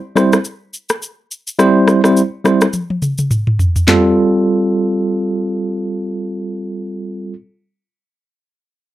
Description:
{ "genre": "afrobeats", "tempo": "105 BPM", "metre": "4/4", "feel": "swing 58% on 16ths", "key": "F major", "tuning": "A4 = 440 Hz", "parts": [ { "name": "tine electric piano", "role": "accompaniment", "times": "0.2-7.3 s", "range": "G3 to C5", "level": "-14 LUFS", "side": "right 1 dB", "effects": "medium stereo tremolo" }, { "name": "afro-pop drum kit", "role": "drums", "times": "0.2-4.0 s", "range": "handclaps, rim click, shaker, snare drum, toms", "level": "-15 LUFS", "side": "equal", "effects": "none" } ], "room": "moderate small room reverb, RT60 0.6 s", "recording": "dry, gritty hardware recording", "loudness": "-13 LUFS", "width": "side -14 dB against mid", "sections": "0.0-3.9 A section; 3.9-6.2 B section", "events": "drum fill 2.7-3.9", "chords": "0.0 C; 3.9 Fadd9" }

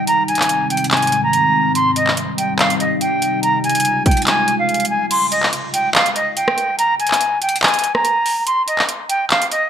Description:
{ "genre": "hip hop, trap", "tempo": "143 BPM", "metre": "4/4", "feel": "half-time", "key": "unclear", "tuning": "A4 = 440 Hz", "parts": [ { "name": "reedy silver concert flute", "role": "melody", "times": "0.0-9.7 s", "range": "Eb5 to C6", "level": "-16 LUFS", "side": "equal", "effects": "low-pass filter, digital delay" }, { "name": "deep dark ambient pad", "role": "sustained chords", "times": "0.0-5.1 s", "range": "Ab2 to F4", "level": "-23 LUFS", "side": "left 1 dB", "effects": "chorus, built-in reverb" }, { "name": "trap drum kit", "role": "drums", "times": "0.1-9.6 s", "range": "crash cymbal, handclaps, hi-hat, kick drum, rim click", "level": "-18 LUFS", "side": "equal", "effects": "gated reverb" } ], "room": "moderate plate reverb, RT60 2.1 s", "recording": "bright 1980s-style digital production", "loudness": "-14 LUFS", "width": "side -9 dB against mid", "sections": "0.0-5.1 A section; 5.1-9.7 B section", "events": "kick muted 4.3-5.1, 5.1-9.7", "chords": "0.1 Ab; 1.8 Cm; 3.4 Db; 5.1 N.C." }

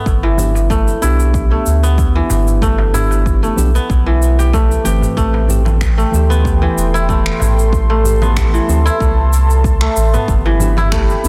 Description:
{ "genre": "organic downtempo", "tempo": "94 BPM", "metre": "4/4", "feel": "swing 54% on 16ths", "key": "unclear", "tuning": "A4 = 443 Hz", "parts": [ { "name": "kora", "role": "arpeggios", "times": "0.0-11.3 s", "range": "E3 to G4", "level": "-21 LUFS", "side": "equal", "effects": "tape echo" }, { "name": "warm sub bass", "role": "bass", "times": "0.1-11.3 s", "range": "E1 to D2", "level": "-16 LUFS", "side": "equal", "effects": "sidechain pumping" }, { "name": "electronic kick drum", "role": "drums", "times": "0.1-11.1 s", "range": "none", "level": "-19 LUFS", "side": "equal", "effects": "overdrive" }, { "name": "electronic shaker, congas and finger snaps", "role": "drums", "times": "0.1-11.3 s", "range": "none", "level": "-28 LUFS", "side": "equal", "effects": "overdrive, soft clipping on snare" }, { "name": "darbuka", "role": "percussion", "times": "0.2-11.3 s", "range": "none", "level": "-28 LUFS", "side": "equal", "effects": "none" }, { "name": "tine electric piano", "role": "accompaniment", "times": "0.4-11.3 s", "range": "E3 to B4", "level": "-25 LUFS", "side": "equal", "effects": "sidechain pumping, tape echo" }, { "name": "warm analog pad", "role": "sustained chords", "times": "5.6-11.3 s", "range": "G4 to C6", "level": "-25 LUFS", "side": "equal", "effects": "chorus, sidechain pumping" } ], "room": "digital ambience", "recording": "dense, heavily limited modern master", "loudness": "-14 LUFS", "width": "mono", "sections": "0.0-11.3 A section", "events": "none", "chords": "0.1 G; 5.2 Am7; 10.3 G" }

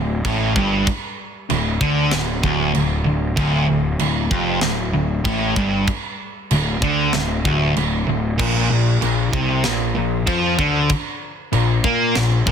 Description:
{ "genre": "heavy metal", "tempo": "96 BPM", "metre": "4/4", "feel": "straight", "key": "D minor", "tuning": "A4 = 440 Hz", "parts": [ { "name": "sludgy distorted guitar", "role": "riff", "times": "0.0-12.5 s", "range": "D2 to Bb3", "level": "-23 LUFS", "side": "left 11 dB", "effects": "overdrive" }, { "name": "sludgy distorted guitar", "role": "riff", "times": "0.0-12.5 s", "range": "D2 to Bb3", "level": "-21 LUFS", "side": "right 5 dB", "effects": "overdrive" }, { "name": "fuzz picked electric bass", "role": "bass", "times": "0.0-12.5 s", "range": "D1 to Bb2", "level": "-24 LUFS", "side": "equal", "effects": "overdrive" }, { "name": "tight metal drum kit", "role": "drums", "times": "0.2-12.5 s", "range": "china cymbal, crash cymbal, kick drum, snare drum", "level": "-24 LUFS", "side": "right 1 dB", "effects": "soft clipping on kick" } ], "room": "small room ambience", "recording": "dense, heavily limited modern master", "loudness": "-17 LUFS", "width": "side -7 dB against mid", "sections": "0.0-12.5 A section", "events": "none", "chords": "0.0 D5; 8.4 Bb5" }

